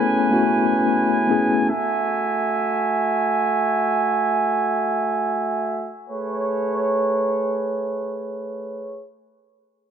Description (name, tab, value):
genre	amapiano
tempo	free time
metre	none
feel	none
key	A major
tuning	A4 = 440 Hz
part	mellow tine electric piano	accompaniment	0.0-1.7 s	A3 to B4	-20 LUFS	left 4 dB	medium stereo tremolo, low-pass filter
part	warm brass ensemble	sustained chords	0.0-9.1 s	A3 to G#5	-20 LUFS	right 2 dB	low-pass filter
room	light reverb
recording	dense, heavily limited modern master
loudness	-19 LUFS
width	side -8 dB against mid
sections	0.0-6.1 A section; 6.1-8.3 B section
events	filter sweep 0.0-6.1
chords	0.0 Amaj9; 1.7 F#m9; 6.1 Amaj9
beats	free time